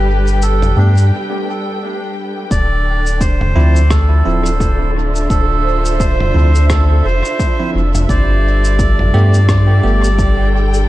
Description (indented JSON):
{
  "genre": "ambient dub",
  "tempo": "86 BPM",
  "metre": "4/4",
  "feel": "swing 58% on 16ths",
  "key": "D dorian",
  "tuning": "A4 = 440 Hz",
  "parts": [
    { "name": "melodica", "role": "melody", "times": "0.0-10.5 s", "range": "D4 to D5", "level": "-20 LUFS", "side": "right 2 dB", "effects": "dub echo" },
    { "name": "dark symphonic string section", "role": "sustained chords", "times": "0.0-10.9 s", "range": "D3 to G5", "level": "-21 LUFS", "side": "equal", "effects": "none" },
    { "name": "soft dub sub bass", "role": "bass", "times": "0.0-10.9 s", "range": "D1 to G2", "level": "-12 LUFS", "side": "equal", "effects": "none" },
    { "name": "lo-fi sampler-style drum kit", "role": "drums", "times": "0.3-10.9 s", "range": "cabasa, rim click, toms", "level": "-24 LUFS", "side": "equal", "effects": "studio ambience, dub echo" },
    { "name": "bell-like tine electric piano", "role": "stabs", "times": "0.8-10.1 s", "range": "F3 to G4", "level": "-24 LUFS", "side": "right 3 dB", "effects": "dub echo" },
    { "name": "electronic kick drum", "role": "drums", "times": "2.5-10.3 s", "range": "none", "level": "-17 LUFS", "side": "equal", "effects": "overdrive, studio ambience" }
  ],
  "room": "digital ambience",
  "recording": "none",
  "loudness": "-11 LUFS",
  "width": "side -16 dB against mid",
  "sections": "0.0-2.5 A section; 2.5-10.9 B section",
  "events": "break 1.1-2.5",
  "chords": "0.0 Gadd9; 2.5 Dm7; 8.1 Gadd9"
}